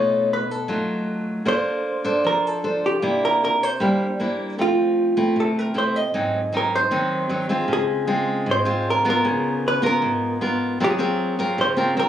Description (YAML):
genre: bossa nova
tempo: 154 BPM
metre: 4/4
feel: straight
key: Db major from 7.7 s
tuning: A4 = 440 Hz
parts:
  - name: hollow-body jazz guitar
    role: melody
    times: 0.0-12.1 s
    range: F4 to Eb5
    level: -22 LUFS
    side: right 1 dB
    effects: none
  - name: nylon-string guitar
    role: accompaniment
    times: 0.0-12.1 s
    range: Ab2 to C5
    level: -22 LUFS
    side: equal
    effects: none
room: light reverb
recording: recorded on a phone in the room, club reverb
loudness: -19 LUFS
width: side -10 dB against mid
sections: 0.0-7.7 A section; 7.7-12.1 B section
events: none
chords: 0.0 B7#11; 1.5 Bbmaj9; 3.0 C9; 4.6 Fmaj7; 6.1 Ab7; 7.7 Dbmaj7; 9.2 Db6; 10.8 Gbmaj9#11